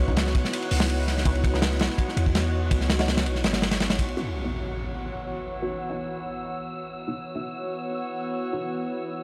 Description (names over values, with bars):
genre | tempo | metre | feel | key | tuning
drum and bass, jungle | 165 BPM | 4/4 | straight | C# minor | A4 = 439 Hz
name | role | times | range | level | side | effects
warbly tape-like pad | sustained chords | 0.0-9.2 s | E3 to F#5 | -34 LUFS | equal | chorus, built-in reverb, phaser
filtered dub chord stab | stabs | 0.0-8.8 s | B3 to F#4 | -39 LUFS | equal | none
warm 808-style bass | bass | 0.0-4.2 s | G#1 to E2 | -28 LUFS | equal | none
wind-like tuned noise texture | texture | 0.0-9.2 s | F#5 to F#6 | -42 LUFS | equal | built-in reverb
crunchy breakbeat drum kit | drums | 0.1-4.2 s | hi-hat, kick drum, ride cymbal, snare drum | -28 LUFS | equal | none
impact | sound effects | 4.2-5.6 s | none | -38 LUFS | equal | none
room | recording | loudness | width
light reverb, small room ambience | dry, gritty hardware recording, transformer saturation | -27 LUFS | mono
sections
0.0-4.2 A section; 4.2-9.2 B section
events
impact 4.2-5.6; filter sweep on synth stab 4.2-9.2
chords
0.0 C#m11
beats
0.17 0.53 0.90 | 1.26 1.62 1.99 2.35 | 2.71 3.08 3.44 3.80 | 4.17 4.53 4.89 5.26 | 5.62 5.99 6.35 6.71 | 7.08 7.44 7.80 8.17 | 8.53 8.89